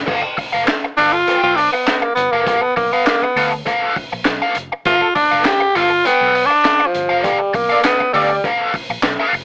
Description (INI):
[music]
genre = funk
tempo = 101 BPM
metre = 4/4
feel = straight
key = G mixolydian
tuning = A4 = 444 Hz
[part]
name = vintage muted fingered electric bass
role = bass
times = 0.0-9.4 s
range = F1 to D2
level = -32 LUFS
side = equal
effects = none
[part]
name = overdriven electric guitar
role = accompaniment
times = 0.1-9.4 s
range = A4 to G5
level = -18 LUFS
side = left 1 dB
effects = wah
[part]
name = crunchy breakbeat drum kit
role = drums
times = 0.1-9.4 s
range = crash cymbal, handclaps, hi-hat, kick drum, snare drum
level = -20 LUFS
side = equal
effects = none
[part]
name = raspy tenor saxophone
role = melody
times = 1.0-8.4 s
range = F3 to G4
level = -14 LUFS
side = equal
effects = none
[part]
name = warm horn section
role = second line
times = 7.7-8.3 s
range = B3 to D5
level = -17 LUFS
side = equal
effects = none
[sound]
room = light reverb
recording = AM radio sound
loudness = -13 LUFS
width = side -31 dB against mid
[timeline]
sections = 0.1-9.4 A section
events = tenor saxophone solo 0.1-9.4; band accent 7.3-9.4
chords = 0.1 G9